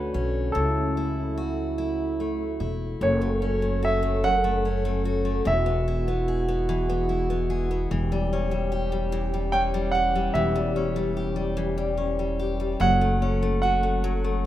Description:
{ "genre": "six-eight pop ballad", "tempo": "49 BPM (dotted quarters)", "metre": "6/8", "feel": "straight", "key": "unclear", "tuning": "A4 = 437 Hz", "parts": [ { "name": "clear concert grand piano", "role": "melody", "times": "0.0-14.4 s", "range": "A4 to G5", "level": "-26 LUFS", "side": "right 2 dB", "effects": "none" }, { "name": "picked steel-string acoustic guitar", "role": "accompaniment", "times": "0.0-14.5 s", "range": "F#2 to G#4", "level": "-28 LUFS", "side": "left 5 dB", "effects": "none" }, { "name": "warm French horn section", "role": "sustained chords", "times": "0.0-14.5 s", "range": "D3 to A4", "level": "-30 LUFS", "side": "right 2 dB", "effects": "none" }, { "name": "upright bass", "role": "bass", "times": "0.0-14.5 s", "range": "E1 to D2", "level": "-27 LUFS", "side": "equal", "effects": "none" } ], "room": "moderate plate reverb, RT60 2.5 s", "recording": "rough home demo mix", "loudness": "-22 LUFS", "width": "side -13 dB against mid", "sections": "0.0-3.0 A section; 3.0-14.5 B section", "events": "none", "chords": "0.0 Dmaj7; 0.6 F#m7/C#; 3.0 F#m; 5.5 Eadd9; 7.9 C#dim/E; 12.8 F#m", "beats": "| 0.55 1.79 | 3.02 4.25 | 5.47 6.69 | 7.91 9.13 | 10.35 11.58 | 12.81 14.04" }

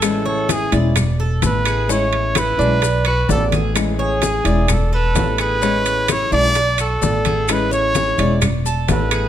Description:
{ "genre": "latin, Cuban son and guajira", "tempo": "129 BPM", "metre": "4/4", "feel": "straight", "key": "A major", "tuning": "A4 = 437 Hz", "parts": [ { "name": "warm trumpet", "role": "melody", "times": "0.0-9.3 s", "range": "G#4 to D5", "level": "-20 LUFS", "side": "right 1 dB", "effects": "none" }, { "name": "flamenco guitar", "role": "accompaniment", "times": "0.0-9.3 s", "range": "D3 to F#4", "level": "-23 LUFS", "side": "left 4 dB", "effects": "none" }, { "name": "Cuban tres", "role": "arpeggios", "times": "0.0-9.3 s", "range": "C#4 to G#5", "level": "-24 LUFS", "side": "right 3 dB", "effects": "none" }, { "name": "upright bass", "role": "bass", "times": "0.0-9.3 s", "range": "E1 to B1", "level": "-20 LUFS", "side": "equal", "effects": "none" }, { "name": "bongos", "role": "percussion", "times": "0.0-9.1 s", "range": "none", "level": "-30 LUFS", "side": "left 8 dB", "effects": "none" }, { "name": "claves", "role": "percussion", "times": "0.0-9.3 s", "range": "none", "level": "-32 LUFS", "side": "left 6 dB", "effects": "none" }, { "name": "congas", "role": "percussion", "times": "0.0-9.1 s", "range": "none", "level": "-25 LUFS", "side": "left 3 dB", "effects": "none" }, { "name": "maracas", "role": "percussion", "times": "0.0-9.3 s", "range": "none", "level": "-30 LUFS", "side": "left 8 dB", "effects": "none" }, { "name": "timbales", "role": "percussion", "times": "0.0-9.3 s", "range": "none", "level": "-25 LUFS", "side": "right 9 dB", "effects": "none" } ], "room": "light reverb", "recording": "close, detailed microphones", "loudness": "-15 LUFS", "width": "side -10 dB against mid", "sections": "0.0-9.3 A section", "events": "trumpet solo 0.0-9.3", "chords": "0.0 Amaj7; 1.0 E7sus4; 1.9 Amaj7; 2.8 Bm7; 3.8 Amaj7; 4.7 E7sus4; 5.6 Amaj7; 6.6 Bm7; 7.5 Amaj7; 8.4 E7sus4", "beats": "| 0.02 0.49 0.96 1.43 | 1.89 2.36 2.83 3.29 | 3.76 4.23 4.70 5.16 | 5.63 6.09 6.56 7.03 | 7.49 7.96 8.42 8.89" }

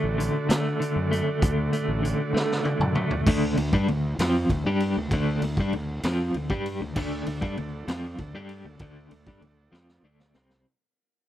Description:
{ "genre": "psychedelic rock", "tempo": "65 BPM (dotted quarters)", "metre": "6/8", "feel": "straight", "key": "D mixolydian", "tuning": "A4 = 440 Hz", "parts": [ { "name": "combo organ", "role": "sustained chords", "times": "0.0-3.2, 6.9-10.6 s", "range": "A3 to D5", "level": "-37 LUFS", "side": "right 5 dB", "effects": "none" }, { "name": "clean electric guitar", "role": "riff", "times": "0.0-10.7 s", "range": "C3 to G4", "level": "-26 LUFS", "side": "equal", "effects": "tremolo" }, { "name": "fuzz fingered electric bass", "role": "bass", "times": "0.0-10.6 s", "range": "A1 to D3", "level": "-30 LUFS", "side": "equal", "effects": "overdrive" }, { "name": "raw garage drum kit", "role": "drums", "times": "0.2-10.6 s", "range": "crash cymbal, hi-hat, kick drum, ride cymbal, snare drum, toms", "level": "-29 LUFS", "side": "equal", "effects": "none" } ], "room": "small room ambience", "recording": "dry, close 1970s-style studio recording", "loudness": "-23 LUFS", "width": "side -12 dB against mid", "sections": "0.0-3.3 A section; 3.3-10.7 B section", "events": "drum fill 2.3-3.3, 9.7-10.7; fade-out 3.3-10.7", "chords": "0.0 D; 3.3 D5", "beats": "0.50 | 1.42 2.34 | 3.27 4.19 | 5.11 6.03 | 6.96 7.88 | 8.80 9.73" }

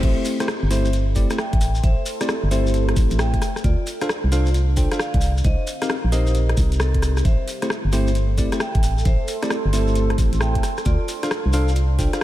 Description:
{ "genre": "UK garage, two-step garage", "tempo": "133 BPM", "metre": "4/4", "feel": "swing 65% on 16ths", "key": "A minor", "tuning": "A4 = 442 Hz", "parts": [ { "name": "vibraphone with medium hard mallets", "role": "melody", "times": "0.0-12.2 s", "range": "C4 to G5", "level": "-31 LUFS", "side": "left 1 dB", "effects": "ping-pong delay" }, { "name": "bell-like tine electric piano", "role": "stabs", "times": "0.0-12.2 s", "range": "A3 to G5", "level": "-26 LUFS", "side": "left 1 dB", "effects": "ping-pong delay" }, { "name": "organ-like FM bass", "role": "bass", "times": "0.0-12.1 s", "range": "G1 to D2", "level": "-19 LUFS", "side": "equal", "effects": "none" }, { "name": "electronic kick drum", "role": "drums", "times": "0.0-12.1 s", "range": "none", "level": "-21 LUFS", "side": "equal", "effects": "none" }, { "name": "garage drum kit", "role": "drums", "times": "0.0-12.2 s", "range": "crash cymbal, hi-hat, rim click", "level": "-29 LUFS", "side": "left 1 dB", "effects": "none" }, { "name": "shekere", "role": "percussion", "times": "0.0-12.2 s", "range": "none", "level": "-35 LUFS", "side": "left 1 dB", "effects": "none" }, { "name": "deep dark ambient pad", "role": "texture", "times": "0.0-12.2 s", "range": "C4 to C6", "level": "-32 LUFS", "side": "right 2 dB", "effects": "chorus, built-in reverb, sidechain pumping" } ], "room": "light reverb", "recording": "none", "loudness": "-18 LUFS", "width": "side -14 dB against mid", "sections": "0.0-12.2 A section", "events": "none", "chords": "0.0 Am7; 3.4 Dm7; 5.2 Cm7; 7.2 Am7; 10.6 Dm7", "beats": "| 0.03 0.48 0.93 1.39 | 1.84 2.29 2.74 3.19 | 3.64 4.09 4.54 5.00 | 5.45 5.90 6.35 6.80 | 7.25 7.70 8.15 8.60 | 9.05 9.51 9.96 10.41 | 10.86 11.31 11.76 12.21" }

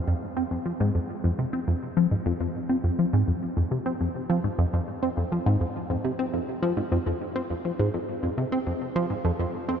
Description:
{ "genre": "ambient", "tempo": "103 BPM", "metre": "4/4", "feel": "straight", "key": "unclear", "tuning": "A4 = 439 Hz", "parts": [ { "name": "tight sequenced synth", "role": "solo", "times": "0.1-9.8 s", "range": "F2 to C4", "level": "-24 LUFS", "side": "equal", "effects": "chorus, phaser, tape echo" } ], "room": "wet huge ambient reverb, RT60 8.1 s", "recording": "dreamy mix soaked in reverb", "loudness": "-24 LUFS", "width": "side -8 dB against mid", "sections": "0.0-9.8 A section", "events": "none", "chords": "none", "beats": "0.37 | 0.95 1.53 2.11 2.70 | 3.28 3.86 4.44 5.03 | 5.61 6.19 6.77 7.36 | 7.94 8.52 9.10 9.69" }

